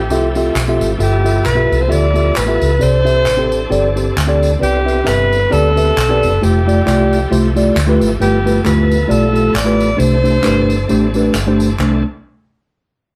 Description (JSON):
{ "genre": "uptempo gospel", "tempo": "134 BPM", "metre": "4/4", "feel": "swing 56% on 8ths", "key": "C major", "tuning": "A4 = 435 Hz", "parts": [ { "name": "breathy alto saxophone", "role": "melody", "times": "0.0-11.3 s", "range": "G4 to D5", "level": "-19 LUFS", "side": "equal", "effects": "none" }, { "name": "bright tonewheel organ", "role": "sustained chords", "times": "0.0-12.0 s", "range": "D3 to A4", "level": "-28 LUFS", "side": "equal", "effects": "slow rotary speaker, overdrive, chorus vibrato" }, { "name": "hollow-body short-scale fingered electric bass", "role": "bass", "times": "0.0-12.0 s", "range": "F1 to D2", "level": "-19 LUFS", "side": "equal", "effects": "none" }, { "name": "mellow tine electric piano", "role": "accompaniment", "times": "0.1-12.0 s", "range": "C2 to E5", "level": "-18 LUFS", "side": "equal", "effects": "none" }, { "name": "tambourine and handclaps", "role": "percussion", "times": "0.1-12.0 s", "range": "none", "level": "-28 LUFS", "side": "equal", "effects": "none" } ], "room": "moderate studio reverb, RT60 0.6 s", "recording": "band playing live in one room", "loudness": "-14 LUFS", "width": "mono", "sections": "0.0-4.6 A section; 4.6-11.8 B section; 11.8-13.2 C section", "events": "none", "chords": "0.0 Fmaj9; 1.0 G13; 2.8 C69; 4.6 Cmaj9; 6.4 Fmaj9; 8.2 G13; 10.0 C69", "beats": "0.11 0.56 | 1.01 1.46 1.92 2.37 | 2.82 3.27 3.72 4.17 | 4.62 5.07 5.52 5.97 | 6.42 6.87 7.32 7.76 | 8.21 8.66 9.11 9.55 | 10.00 10.45 10.90 11.35 | 11.79" }